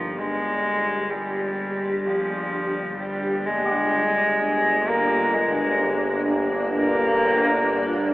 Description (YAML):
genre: dark ambient drone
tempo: free time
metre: none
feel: none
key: G phrygian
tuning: A4 = 440 Hz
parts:
  - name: warm cello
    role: melody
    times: 0.0-8.1 s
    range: F3 to Bb3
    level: -22 LUFS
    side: equal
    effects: shimmer reverb, analog delay
  - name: granular cloud pad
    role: sustained chords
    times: 0.0-8.1 s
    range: Bb3 to D5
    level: -27 LUFS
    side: equal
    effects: built-in reverb, ensemble chorus, shimmer reverb
  - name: gamelan-type bronze metallophone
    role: arpeggios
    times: 0.0-8.1 s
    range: D3 to G4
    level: -39 LUFS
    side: left 1 dB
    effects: none
  - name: analog drone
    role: drone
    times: 0.0-8.1 s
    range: G1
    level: -28 LUFS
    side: equal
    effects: chorus
room: wet huge ambient reverb, RT60 7.5 s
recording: dreamy mix soaked in reverb, cassette tape, telephone sound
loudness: -20 LUFS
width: side -18 dB against mid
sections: 0.0-8.1 A section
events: fade-in on ambient pad 0.0-8.1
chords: 0.0 Gm